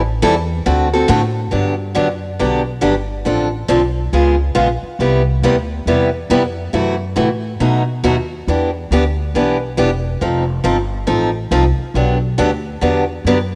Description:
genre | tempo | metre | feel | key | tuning
acoustic string swing (jazz manouche) | 138 BPM | 4/4 | swing 62% on 8ths | G major | A4 = 441 Hz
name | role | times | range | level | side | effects
upright bass | bass | 0.0-13.6 s | E1 to B2 | -21 LUFS | equal | none
picked steel-string acoustic guitar | accompaniment | 0.2-13.4 s | B2 to A4 | -18 LUFS | equal | cassette tape
room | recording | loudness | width
light reverb, small room reverb | home recording on cassette | -17 LUFS | mono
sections
0.0-1.5 A section; 1.5-13.6 B section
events
none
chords
0.0 Am7; 0.7 D7; 1.5 Gmaj7; 3.3 Dm7; 4.1 C#7; 5.0 Cmaj9; 6.7 F#m7b5; 7.6 B7; 8.5 Em7; 10.2 F9; 12.0 Gmaj7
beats
0.23 0.66 1.09 | 1.52 1.96 2.39 2.83 | 3.26 3.69 4.13 4.56 | 5.00 5.43 5.87 6.30 | 6.74 7.17 7.61 8.04 | 8.48 8.91 9.35 9.78 | 10.21 10.65 11.08 11.52 | 11.95 12.39 12.82 13.25

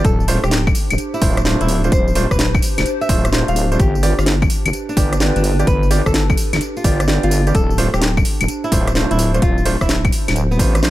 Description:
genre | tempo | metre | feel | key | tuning
UK garage, two-step garage | 128 BPM | 4/4 | swing 67% on 16ths | D dorian | A4 = 440 Hz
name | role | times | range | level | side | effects
nylon-string guitar | melody | 0.0-10.8 s | B3 to F5 | -24 LUFS | equal | ping-pong delay
warm grand piano | stabs | 0.0-10.9 s | A3 to D5 | -23 LUFS | right 3 dB | dub echo
deep soft wobble bass | bass | 0.0-10.9 s | D1 to A1 | -18 LUFS | equal | chorus, sidechain pumping
electronic kick drum | drums | 0.0-10.7 s | none | -18 LUFS | equal | overdrive
house drum kit | drums | 0.0-10.9 s | claves, hi-hat, rim click, snare drum, tambourine | -21 LUFS | left 1 dB | overdrive
warbly tape-like pad | texture | 0.0-10.9 s | D4 to C5 | -27 LUFS | equal | chorus, built-in reverb, sidechain pumping
room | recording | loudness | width
little or no reverb | none | -14 LUFS | side -15 dB against mid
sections
0.0-10.9 A section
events
none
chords
0.0 Dm7; 3.8 G7; 7.5 Dm7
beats
| 0.05 0.52 0.98 1.45 | 1.92 2.39 2.86 3.33 | 3.80 4.26 4.73 5.20 | 5.67 6.14 6.61 7.08 | 7.55 8.02 8.48 8.95 | 9.42 9.89 10.36 10.83

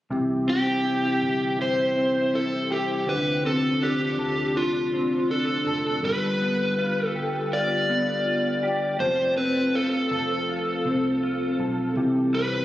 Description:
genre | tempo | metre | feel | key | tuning
dream pop | 81 BPM | 4/4 | straight | C major | A4 = 441 Hz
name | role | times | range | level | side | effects
mellow tonewheel organ | sustained chords | 0.1-12.6 s | C3 to A4 | -31 LUFS | right 1 dB | slow rotary speaker
mellow electric guitar | arpeggios | 0.1-12.6 s | G2 to A4 | -26 LUFS | equal | ensemble chorus, digital delay
vintage muted picked electric bass | bass | 0.1-12.6 s | F1 to D2 | -40 LUFS | equal | none
overdriven slide guitar | melody | 0.5-12.6 s | F4 to D5 | -25 LUFS | left 1 dB | digital delay
room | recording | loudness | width
moderate huge ambient reverb, RT60 4.8 s | recorded on a phone in the room, studio reverb | -22 LUFS | side -14 dB against mid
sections
0.1-12.6 A section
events
none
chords
0.1 C; 3.1 Dm7; 6.0 G7; 9.0 F; 12.0 C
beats
| 0.11 0.85 1.59 2.34 | 3.08 3.82 4.56 5.30 | 6.04 6.78 7.52 8.26 | 9.00 9.74 10.48 11.22 | 11.97

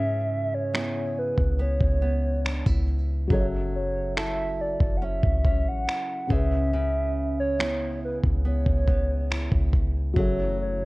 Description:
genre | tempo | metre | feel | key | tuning
contemporary R&B | 70 BPM | 4/4 | straight | unclear | A4 = 439 Hz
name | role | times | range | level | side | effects
hollow clarinet-like synth lead | melody | 0.0-10.8 s | B4 to F#5 | -29 LUFS | right 1 dB | chorus
felt-muted upright piano | accompaniment | 0.0-10.8 s | C#3 to E5 | -35 LUFS | left 3 dB | none
nylon-string guitar | arpeggios | 0.0-10.8 s | C#3 to A4 | -33 LUFS | right 2 dB | none
clean 808-style bass | bass | 0.0-10.8 s | F#1 to G#2 | -26 LUFS | equal | none
dusty soul sampler-style drum kit | drums | 0.7-10.4 s | finger snaps, kick drum | -26 LUFS | equal | none
warm analog pad | sustained chords | 10.2-10.8 s | C#3 to E4 | -37 LUFS | left 2 dB | chorus
room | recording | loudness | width
digital ambience | worn, warbling old tape, cassette tape, warbly pitch drift | -23 LUFS | side -22 dB against mid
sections
0.0-10.8 A section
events
break 0.0-10.2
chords
0.0 C#m7; 3.3 F#m7; 6.3 C#m7; 10.2 F#m7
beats
0.73 1.59 2.45 | 3.31 4.16 5.02 5.88 | 6.73 7.59 8.45 9.30 | 10.16

